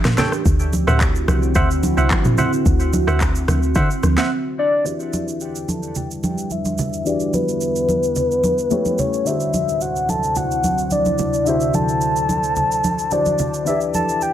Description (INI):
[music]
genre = amapiano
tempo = 109 BPM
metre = 4/4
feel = straight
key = E minor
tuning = A4 = 440 Hz
[part]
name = deep dark ambient pad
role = sustained chords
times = 0.0-14.3 s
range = D2 to G4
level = -25 LUFS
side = right 1 dB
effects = chorus, built-in reverb, sidechain pumping, low-pass filter
[part]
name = afro-pop drum kit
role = drums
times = 0.0-14.3 s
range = handclaps, kick drum, rim click, shaker, snare drum, toms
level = -22 LUFS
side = equal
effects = none
[part]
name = congas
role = percussion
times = 0.1-14.1 s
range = none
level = -24 LUFS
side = right 2 dB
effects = none
[part]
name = percussive organ stab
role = stabs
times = 0.2-4.3 s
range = A4 to G5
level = -25 LUFS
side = right 2 dB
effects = chorus, tape echo
[part]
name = deep log drum bass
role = bass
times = 0.5-4.2 s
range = C2 to D3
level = -18 LUFS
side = equal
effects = none
[part]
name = soft octave-layered synth lead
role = melody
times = 4.6-14.3 s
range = B4 to A5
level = -20 LUFS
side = left 1 dB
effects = chorus, low-pass filter, tape echo
[part]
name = dark grand piano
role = accompaniment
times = 4.8-14.3 s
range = D3 to E5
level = -25 LUFS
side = left 4 dB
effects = low-pass filter
[sound]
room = light reverb, digital ambience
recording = none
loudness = -16 LUFS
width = side -11 dB against mid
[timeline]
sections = 0.0-4.9 A section; 4.9-14.3 B section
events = drop 0.0-4.9; break 4.3-4.9; filter sweep 4.9-14.3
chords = 0.5 D9; 4.9 Em7; 8.7 A7; 9.3 D9; 13.7 Em7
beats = | 0.46 1.01 1.56 2.11 | 2.66 3.21 3.76 4.31 | 4.86 5.41 5.96 6.51 | 7.06 7.61 8.16 8.71 | 9.26 9.81 10.36 10.91 | 11.46 12.02 12.57 13.12 | 13.67 14.22